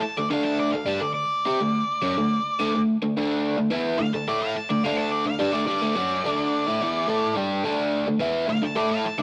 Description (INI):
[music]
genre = rock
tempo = 106 BPM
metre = 4/4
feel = straight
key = unclear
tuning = A4 = 440 Hz
[part]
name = octave-fuzz lead guitar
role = melody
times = 0.0-9.2 s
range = D5 to A5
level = -29 LUFS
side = equal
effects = distortion
[part]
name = overdriven electric guitar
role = riff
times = 0.0-9.2 s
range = D3 to A4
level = -26 LUFS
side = equal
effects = none
[sound]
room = moderate stone room reverb, RT60 1.0 s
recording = rough rehearsal-room recording, warm saturation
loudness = -24 LUFS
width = mono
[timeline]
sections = 0.0-9.2 A section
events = none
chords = 0.0 D5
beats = 0.30 | 0.87 1.44 2.00 2.57 | 3.14 3.70 4.27 4.83 | 5.40 5.96 6.53 7.09 | 7.66 8.22 8.79